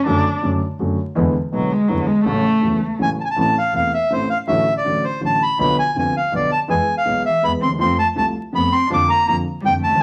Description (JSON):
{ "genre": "tango", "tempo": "163 BPM", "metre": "3/4", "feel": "rubato", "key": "A major, A harmonic minor from 3.4 s", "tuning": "A4 = 440 Hz", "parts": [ { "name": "warm cello", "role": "second line", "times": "0.0-2.9, 7.2-10.0 s", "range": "E3 to D4", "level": "-23 LUFS", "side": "equal", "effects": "none" }, { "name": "dark concert grand piano", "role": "accompaniment", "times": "0.1-10.0 s", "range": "E1 to G#4", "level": "-24 LUFS", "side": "equal", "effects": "none" }, { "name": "clear double bass", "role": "bass", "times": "0.1-10.0 s", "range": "E1 to F2", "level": "-30 LUFS", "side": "equal", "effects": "none" }, { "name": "bandoneon", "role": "melody", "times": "3.0-10.0 s", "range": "C5 to D6", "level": "-20 LUFS", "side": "equal", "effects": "none" } ], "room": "wet studio reverb, RT60 0.6 s", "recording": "vinyl crackle", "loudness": "-18 LUFS", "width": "mono", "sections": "0.0-3.4 A section; 3.4-10.0 B section", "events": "cello solo 0.0-3.4", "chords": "0.1 D/F#; 1.2 E7; 2.3 A6; 3.4 Am; 4.5 D/A; 5.6 Bdim; 6.7 E; 7.8 F; 8.9 Bb/F", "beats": "| 0.07 0.43 0.80 | 1.16 1.53 1.89 | 2.25 2.62 2.99 | 3.37 3.74 4.11 | 4.48 4.85 5.22 | 5.58 5.95 6.31 | 6.68 7.05 7.42 | 7.79 8.16 8.54 | 8.90 9.27 9.64 | 10.00" }